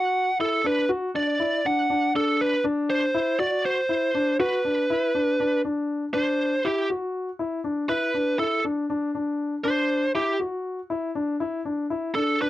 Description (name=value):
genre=progressive instrumental, progressive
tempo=240 BPM (eighths)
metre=7/8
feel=straight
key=unclear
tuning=A4 = 439 Hz
part: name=biting lead guitar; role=melody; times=0.0-12.5 s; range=G4 to F#5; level=-23 LUFS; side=right 2 dB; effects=overdrive
part: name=warm concert grand piano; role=arpeggios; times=0.0-12.5 s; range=D4 to F#4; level=-26 LUFS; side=left 3 dB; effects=none
room=light reverb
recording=dry, close 1970s-style studio recording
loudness=-22 LUFS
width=side -15 dB against mid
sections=0.0-6.1 A section; 6.1-12.5 B section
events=lead electric guitar solo 6.1-12.5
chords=0.0 Dadd9; 7.9 E5; 9.6 D9; 11.4 E7(no3)